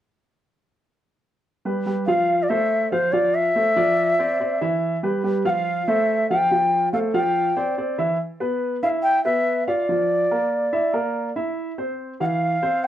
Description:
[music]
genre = jazz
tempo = 142 BPM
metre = 4/4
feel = straight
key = unclear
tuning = A4 = 440 Hz
[part]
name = warm baby grand piano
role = accompaniment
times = 1.7-12.9 s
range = E3 to F5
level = -23 LUFS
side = right 1 dB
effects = none
[part]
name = bansuri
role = melody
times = 2.1-12.9 s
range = C5 to G5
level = -20 LUFS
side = equal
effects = plate reverb
[sound]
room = moderate club reverb, RT60 0.6 s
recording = worn, warbling old tape, cassette tape, warbly pitch drift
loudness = -19 LUFS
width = side -11 dB against mid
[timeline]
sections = 1.4-8.2 A section; 8.2-12.9 B section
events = none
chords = 1.4 G7; 2.3 Fmaj7; 3.1 Dm7; 4.0 Dm9; 4.8 Em; 5.7 Fmaj7; 7.3 G7sus4; 8.2 Bsus4; 9.9 Bb/F; 10.7 Bb; 11.6 F5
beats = | 1.44 1.86 2.28 2.71 | 3.13 3.55 3.97 4.39 | 4.82 5.24 5.66 6.08 | 6.50 6.93 7.35 7.77 | 8.20 8.62 9.04 9.46 | 9.88 10.31 10.73 11.15 | 11.57 11.99 12.41 12.83

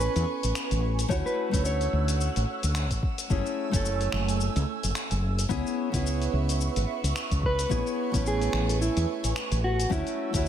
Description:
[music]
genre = sunset chillout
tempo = 109 BPM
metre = 4/4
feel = swing 57% on 16ths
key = F# minor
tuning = A4 = 440 Hz
[part]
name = mellow electric guitar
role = melody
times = 0.0-2.7, 7.5-10.5 s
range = E4 to C#5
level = -31 LUFS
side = equal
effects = tape echo
[part]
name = nylon-string guitar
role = accompaniment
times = 0.0-10.5 s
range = A3 to A4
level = -32 LUFS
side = moving between left 8 dB and right 9 dB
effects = auto-pan, tape echo
[part]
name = airy breathy pad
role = sustained chords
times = 0.0-10.5 s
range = A3 to E6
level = -35 LUFS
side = right 4 dB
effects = chorus, phaser
[part]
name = woody fretless electric bass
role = bass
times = 0.0-10.5 s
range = F#1 to E2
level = -27 LUFS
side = equal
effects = none
[part]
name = dusty soul sampler-style drum kit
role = drums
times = 0.0-10.4 s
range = finger snaps, hi-hat, shaker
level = -35 LUFS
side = left 3 dB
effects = none
[part]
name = electronic kick drum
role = drums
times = 1.1-10.4 s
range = none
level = -30 LUFS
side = equal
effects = none
[sound]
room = light reverb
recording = none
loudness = -25 LUFS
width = side -10 dB against mid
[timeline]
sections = 0.0-10.5 A section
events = none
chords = 0.0 Amaj9; 1.1 Dmaj9; 3.3 F#m9; 5.5 C#m7; 7.7 Amaj9; 9.9 Dmaj9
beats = 0.00 0.55 | 1.10 1.65 2.20 2.75 | 3.30 3.85 4.40 4.95 | 5.50 6.05 6.60 7.16 | 7.71 8.26 8.81 9.36 | 9.91 10.46

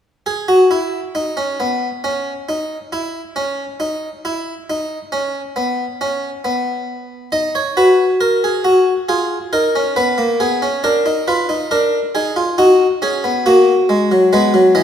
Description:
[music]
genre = classical, baroque-style 3-part fugue for harpsichord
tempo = 68 BPM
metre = 4/4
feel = straight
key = unclear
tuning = A4 = 441 Hz
[part]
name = harpsichord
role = solo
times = 0.3-14.8 s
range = E3 to D#5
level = -14 LUFS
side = equal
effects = none
[sound]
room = moderate scoring stage reverb, RT60 1.9 s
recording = recorded in a church or concert hall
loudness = -14 LUFS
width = side -9 dB against mid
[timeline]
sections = 0.3-14.8 A section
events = none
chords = 0.3 N.C.; 7.3 D#m; 9.1 Fm7b5; 10.8 A#7/D; 12.6 D#m; 14.3 G#m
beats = | 0.27 1.16 2.04 2.92 | 3.81 4.69 5.57 6.45 | 7.33 8.21 9.08 9.96 | 10.83 11.70 12.58 13.45 | 14.32

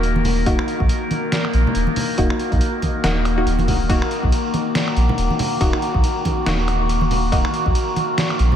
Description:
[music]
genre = deep dubstep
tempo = 140 BPM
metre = 4/4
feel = swing 58% on 16ths, half-time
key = Eb minor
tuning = A4 = 440 Hz
[part]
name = overtone-sweeping drone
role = sustained chords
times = 0.0-8.6 s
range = Eb3 to Bb4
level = -22 LUFS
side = left 2 dB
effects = chorus, built-in reverb
[part]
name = saturated sub bass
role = bass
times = 0.0-8.5 s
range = Eb1 to Bb1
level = -20 LUFS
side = equal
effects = none
[part]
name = trip hop sampler-style drum kit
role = drums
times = 0.0-8.5 s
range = crash cymbal, finger snaps, hi-hat, snare drum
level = -26 LUFS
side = equal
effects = small room reverb
[part]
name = congas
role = percussion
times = 0.2-8.6 s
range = none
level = -28 LUFS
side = right 2 dB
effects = dub echo
[part]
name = filtered dub chord stab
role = stabs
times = 0.5-7.4 s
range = Bb3 to Gb4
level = -25 LUFS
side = left 1 dB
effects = chorus, dub echo
[part]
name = electronic kick drum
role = drums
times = 0.5-7.7 s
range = none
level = -21 LUFS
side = equal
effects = small room reverb
[sound]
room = moderate cathedral reverb, RT60 5.5 s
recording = dreamy mix soaked in reverb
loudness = -17 LUFS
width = side -9 dB against mid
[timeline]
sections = 0.0-8.6 A section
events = none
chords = 0.0 Ebm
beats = 0.04 | 0.47 0.89 1.32 1.75 | 2.18 2.61 3.04 3.46 | 3.89 4.32 4.75 5.18 | 5.61 6.04 6.46 6.89 | 7.32 7.75 8.18

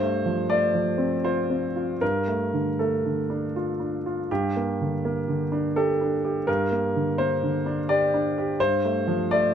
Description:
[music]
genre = neoclassical minimalist piano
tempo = 77-86 BPM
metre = 3/4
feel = rubato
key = G minor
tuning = A4 = 445 Hz
[part]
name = warm concert grand piano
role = solo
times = 0.0-9.5 s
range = G2 to D5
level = -22 LUFS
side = equal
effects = none
[sound]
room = light reverb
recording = none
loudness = -22 LUFS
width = side -8 dB against mid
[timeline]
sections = 0.0-9.5 A section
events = none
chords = 0.0 F/G; 2.0 Dm/G; 4.3 Gm; 8.6 F/G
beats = 0.51 1.25 | 2.01 2.78 3.54 | 4.29 5.02 5.75 | 6.47 7.18 7.89 | 8.59 9.31

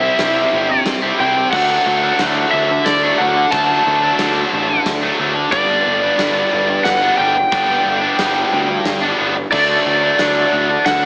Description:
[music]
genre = post-rock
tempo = 90 BPM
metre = 3/4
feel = straight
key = G major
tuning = A4 = 439 Hz
[part]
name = overdriven slide guitar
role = melody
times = 0.0-11.1 s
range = D5 to A5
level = -19 LUFS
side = equal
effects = analog delay
[part]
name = tight distorted guitar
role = riff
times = 0.0-11.1 s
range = G2 to E4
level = -20 LUFS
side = equal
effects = distortion
[part]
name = fuzz picked electric bass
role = bass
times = 0.0-11.1 s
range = G1 to D2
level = -26 LUFS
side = equal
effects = overdrive
[part]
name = big rock drum kit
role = drums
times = 0.2-11.0 s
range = crash cymbal, hi-hat, kick drum, snare drum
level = -27 LUFS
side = equal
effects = none
[part]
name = glockenspiel with rubber mallets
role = arpeggios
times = 9.5-11.1 s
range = F#6 to A6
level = -23 LUFS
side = equal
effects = none
[sound]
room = light reverb, studio reverb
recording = AM radio sound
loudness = -16 LUFS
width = mono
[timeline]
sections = 0.0-11.1 A section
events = none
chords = 0.0 C; 1.5 D; 5.5 G; 9.5 D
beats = 0.18 0.85 | 1.52 2.19 2.86 | 3.52 4.19 4.86 | 5.52 6.19 6.86 | 7.52 8.19 8.85 | 9.52 10.19 10.85

